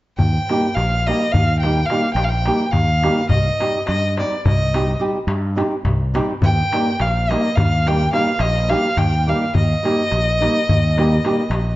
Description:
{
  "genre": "balkan folk, Balkan wedding band",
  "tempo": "211 BPM (eighths)",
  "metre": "11/8",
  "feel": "straight",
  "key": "Eb major",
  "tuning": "A4 = 440 Hz",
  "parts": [
    { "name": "rich violin", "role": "melody", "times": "0.2-11.8 s", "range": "D5 to G5", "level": "-21 LUFS", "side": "equal", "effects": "none" },
    { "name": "fretless electric bass", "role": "bass", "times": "0.2-11.8 s", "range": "Bb1 to G2", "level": "-20 LUFS", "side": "equal", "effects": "none" },
    { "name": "darbuka", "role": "percussion", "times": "0.2-11.7 s", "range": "none", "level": "-22 LUFS", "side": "left 1 dB", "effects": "none" },
    { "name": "nylon-string guitar", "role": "accompaniment", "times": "0.5-11.4 s", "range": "G3 to G4", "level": "-22 LUFS", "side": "right 1 dB", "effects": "none" }
  ],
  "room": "moderate recital hall reverb, RT60 1.4 s",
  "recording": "dark, warm production, nothing above 7.7 kHz",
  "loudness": "-16 LUFS",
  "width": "side -17 dB against mid",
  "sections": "0.2-11.8 A section",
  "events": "none",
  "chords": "0.2 Eb; 3.3 Cm; 6.4 Eb"
}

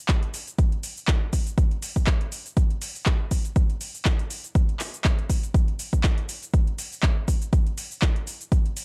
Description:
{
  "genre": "house",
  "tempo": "121 BPM",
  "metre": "4/4",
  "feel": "swing 55% on 16ths",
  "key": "none",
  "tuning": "none",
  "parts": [
    { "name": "deep house drum kit", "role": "drums", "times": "0.1-8.8 s", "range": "cabasa, handclaps, hi-hat", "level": "-33 LUFS", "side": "equal", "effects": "overdrive" },
    { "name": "electronic kick drum", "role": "drums", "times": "0.1-8.6 s", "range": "none", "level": "-24 LUFS", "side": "equal", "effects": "overdrive" }
  ],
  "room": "little or no reverb",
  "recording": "dry, gritty hardware recording, cassette tape",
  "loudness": "-25 LUFS",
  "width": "mono",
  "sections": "0.0-8.8 A section",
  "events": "none",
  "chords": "none"
}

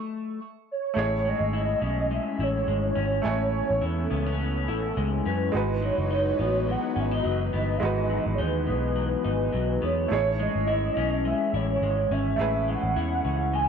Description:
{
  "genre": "indie pop",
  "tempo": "105 BPM",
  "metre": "4/4",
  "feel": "swing 55% on 16ths",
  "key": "A lydian",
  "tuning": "A4 = 440 Hz",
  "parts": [
    { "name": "warbly nostalgic lead", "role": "melody", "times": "0.0-13.7 s", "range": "A4 to G#5", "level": "-28 LUFS", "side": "right 1 dB", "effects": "tremolo, ensemble chorus" },
    { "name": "electric guitar through a small old amp", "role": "accompaniment", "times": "0.0-13.7 s", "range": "G#2 to E4", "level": "-31 LUFS", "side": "left 3 dB", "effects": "wide subtle chorus, warbly pitch drift" },
    { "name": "bright upright piano", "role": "accompaniment", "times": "0.9-13.7 s", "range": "G#3 to G#5", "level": "-34 LUFS", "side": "right 6 dB", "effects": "plate reverb" },
    { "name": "phased analog pad", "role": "sustained chords", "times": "1.5-13.7 s", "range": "E3 to B4", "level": "-34 LUFS", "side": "equal", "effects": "phaser, chorus" },
    { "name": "vintage muted picked electric bass", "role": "bass", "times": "1.0-13.7 s", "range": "F#1 to F#2", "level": "-28 LUFS", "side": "equal", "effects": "none" }
  ],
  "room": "moderate studio reverb, RT60 0.6 s",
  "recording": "dark, warm production",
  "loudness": "-24 LUFS",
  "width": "side -7 dB against mid",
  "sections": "1.0-13.7 A section",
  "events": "stop 0.0-1.0",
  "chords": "0.0 B7(no3) (rootless); 1.0 Amaj7; 5.5 G#m7; 10.1 Amaj7"
}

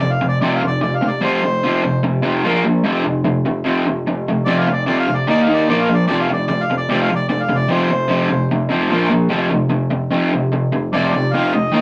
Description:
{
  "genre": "rock",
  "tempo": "149 BPM",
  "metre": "4/4",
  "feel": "straight",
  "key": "unclear",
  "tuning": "A4 = 440 Hz",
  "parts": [
    { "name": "mellow harmonica", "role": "melody", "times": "0.0-11.8 s", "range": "C5 to F5", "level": "-23 LUFS", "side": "equal", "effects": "overdrive" },
    { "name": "raw garage guitar", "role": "riff", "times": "0.0-11.8 s", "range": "F2 to Eb4", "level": "-18 LUFS", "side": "equal", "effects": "overdrive" }
  ],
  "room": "moderate small room reverb, RT60 0.5 s",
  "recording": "rough rehearsal-room recording",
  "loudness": "-17 LUFS",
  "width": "mono",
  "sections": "0.0-11.8 A section",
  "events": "none",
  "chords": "0.0 F5; 2.4 Bb5; 2.8 F5; 5.3 Eb5; 5.7 Bb5; 6.1 F5; 8.9 Bb5; 9.3 F5"
}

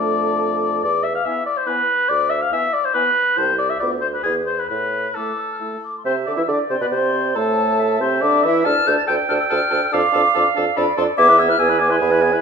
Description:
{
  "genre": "quick classical-period movement for wind quintet",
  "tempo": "141 BPM",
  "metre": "3/4",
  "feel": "rubato",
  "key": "unclear",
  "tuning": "A4 = 440 Hz",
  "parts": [
    { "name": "mellow hollow silver concert flute", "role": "melody", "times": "0.0-12.4 s", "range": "G#5 to A6", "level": "-20 LUFS", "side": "left 3 dB", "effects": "none" },
    { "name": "mellow oboe", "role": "second line", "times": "0.0-12.4 s", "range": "G#4 to F5", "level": "-21 LUFS", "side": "left 3 dB", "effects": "none" },
    { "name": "warm French horn", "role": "accompaniment", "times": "0.0-12.4 s", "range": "A3 to E4", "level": "-24 LUFS", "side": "equal", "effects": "none" },
    { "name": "warm clarinet", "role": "accompaniment", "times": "0.0-12.4 s", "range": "D4 to A5", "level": "-24 LUFS", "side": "right 8 dB", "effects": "none" },
    { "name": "mellow bassoon", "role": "bass", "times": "0.0-12.4 s", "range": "C2 to E3", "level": "-22 LUFS", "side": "right 4 dB", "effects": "none" }
  ],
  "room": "moderate recital hall reverb, RT60 1.5 s",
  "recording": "minimal, uncompressed stereo recording",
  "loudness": "-16 LUFS",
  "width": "side -6 dB against mid",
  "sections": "0.0-6.1 A section; 6.1-12.4 B section",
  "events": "none",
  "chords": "0.0 Dm/F; 0.8 E5; 2.1 E7(no3)/D; 3.4 Am/C (rootless); 3.8 Bdim/D; 4.3 E5; 4.7 A5; 6.1 Cmaj9; 7.4 Am; 8.7 Dm; 9.9 Dm/F; 11.2 E"
}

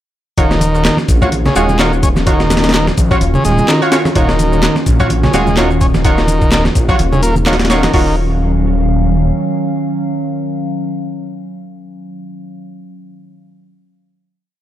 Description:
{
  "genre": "breakbeat, breaks",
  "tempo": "127 BPM",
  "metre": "4/4",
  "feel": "swing 56% on 16ths",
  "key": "Eb minor",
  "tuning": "A4 = 436 Hz",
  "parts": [
    { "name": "warbly tape-like pad", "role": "sustained chords", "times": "0.4-12.2 s", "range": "Eb3 to F5", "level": "-20 LUFS", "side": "equal", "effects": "chorus, built-in reverb, sidechain pumping" },
    { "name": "overdriven combo organ", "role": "riff", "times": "0.4-8.2 s", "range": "Db3 to Db4", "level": "-17 LUFS", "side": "equal", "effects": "dub echo" },
    { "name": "orchestra-hit-like synth stab", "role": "stabs", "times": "0.4-12.2 s", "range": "F4 to Db5", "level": "-19 LUFS", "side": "right 1 dB", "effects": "built-in reverb, vintage 12-bit sampler grit, dub echo" },
    { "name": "phased detuned saw bass", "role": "bass", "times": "0.4-9.3 s", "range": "Eb1 to Bb1", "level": "-16 LUFS", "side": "equal", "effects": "phaser" },
    { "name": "breakbeat sampler-style drum kit", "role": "drums", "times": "0.4-8.1 s", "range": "hi-hat, kick drum, snare drum", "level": "-15 LUFS", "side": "equal", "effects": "none" },
    { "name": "electronic shaker and handclaps", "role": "drums", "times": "0.4-7.9 s", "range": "none", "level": "-24 LUFS", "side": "left 1 dB", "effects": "none" },
    { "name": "congas", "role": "percussion", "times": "0.6-7.9 s", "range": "none", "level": "-20 LUFS", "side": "equal", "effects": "none" }
  ],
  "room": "little or no reverb",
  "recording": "none",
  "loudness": "-11 LUFS",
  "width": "side -12 dB against mid",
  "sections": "0.4-7.9 drop; 7.9-11.7 final chord",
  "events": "drop 0.4-7.9",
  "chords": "0.4 Ebm9"
}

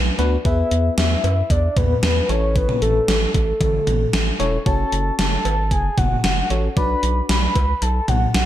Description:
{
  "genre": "synth-pop",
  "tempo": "114 BPM",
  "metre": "4/4",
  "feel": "straight",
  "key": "F# minor",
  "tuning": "A4 = 440 Hz",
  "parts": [
    { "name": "soft octave-layered synth lead", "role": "melody", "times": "0.0-8.5 s", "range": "A4 to B5", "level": "-23 LUFS", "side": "left 1 dB", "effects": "chorus, tremolo, analog delay" },
    { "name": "round analog bass", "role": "bass", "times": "0.0-8.5 s", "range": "E1 to F#2", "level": "-20 LUFS", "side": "equal", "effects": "none" },
    { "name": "FM electric piano", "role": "accompaniment", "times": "0.2-7.5 s", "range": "B3 to D5", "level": "-25 LUFS", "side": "left 3 dB", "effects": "chorus, analog delay" },
    { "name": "gated 80s digital drum machine", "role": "drums", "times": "0.2-8.5 s", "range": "cowbell, hi-hat, kick drum, snare drum, toms", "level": "-21 LUFS", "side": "equal", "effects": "gated reverb, gated reverb snare, overdrive, analog delay" }
  ],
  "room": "moderate spring reverb, RT60 2.1 s",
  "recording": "echo-heavy mix",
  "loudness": "-16 LUFS",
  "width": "side -12 dB against mid",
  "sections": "0.0-8.5 A section",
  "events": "none",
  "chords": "0.5 E; 2.3 A; 4.7 F#m; 6.8 Bm"
}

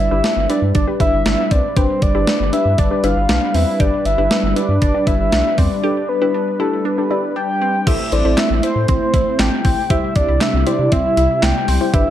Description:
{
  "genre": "synth-pop",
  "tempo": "118 BPM",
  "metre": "4/4",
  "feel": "straight",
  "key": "unclear",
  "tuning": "A4 = 441 Hz",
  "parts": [
    { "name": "soft octave-layered synth lead", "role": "melody", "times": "0.0-12.1 s", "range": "A4 to G5", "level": "-19 LUFS", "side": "equal", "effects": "chorus, slapback echo" },
    { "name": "warm analog pad", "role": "sustained chords", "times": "0.0-12.1 s", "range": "C3 to B4", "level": "-23 LUFS", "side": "equal", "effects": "chorus" },
    { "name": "round analog bass", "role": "bass", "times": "0.0-12.0 s", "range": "G1 to C3", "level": "-19 LUFS", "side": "equal", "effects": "none" },
    { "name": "warbly dusty pluck", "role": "accompaniment", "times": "0.1-12.1 s", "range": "D4 to D5", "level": "-23 LUFS", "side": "left 1 dB", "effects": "chorus" },
    { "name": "resonant blip pluck", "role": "arpeggios", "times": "0.1-12.1 s", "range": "C4 to G4", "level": "-27 LUFS", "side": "right 2 dB", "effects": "phaser, slapback echo" },
    { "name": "clean 12-bit digital drum machine", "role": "drums", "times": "0.2-12.1 s", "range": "crash cymbal, handclaps, hi-hat, kick drum, snare drum", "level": "-19 LUFS", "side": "equal", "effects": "none" }
  ],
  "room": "moderate plate reverb, RT60 1.8 s, digital ambience",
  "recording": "dark, warm production",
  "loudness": "-14 LUFS",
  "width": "side -11 dB against mid",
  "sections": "0.0-7.9 A section; 7.9-12.1 B section",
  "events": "break 5.8-7.9",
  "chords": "0.0 G; 7.9 Am; 9.9 C"
}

